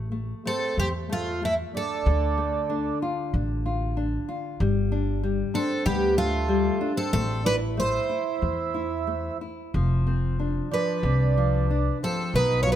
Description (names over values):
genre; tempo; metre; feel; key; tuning
fado-style ballad; 93 BPM; 4/4; rubato; A minor; A4 = 440 Hz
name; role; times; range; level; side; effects
nylon-string guitar; accompaniment; 0.0-12.8 s; B2 to F4; -30 LUFS; left 3 dB; none
upright bass; bass; 0.0-12.8 s; F1 to E2; -26 LUFS; equal; none
picked twelve-string acoustic guitar; melody; 0.5-12.8 s; E4 to C#5; -27 LUFS; right 1 dB; none
mellow accordion; second line; 0.5-12.8 s; A3 to F4; -30 LUFS; right 7 dB; none
room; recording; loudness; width
light reverb; close, detailed microphones; -23 LUFS; side -11 dB against mid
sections
0.0-12.8 A section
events
none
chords
0.0 A5; 2.1 Dm; 4.6 Gsus2; 7.1 Am; 9.7 F5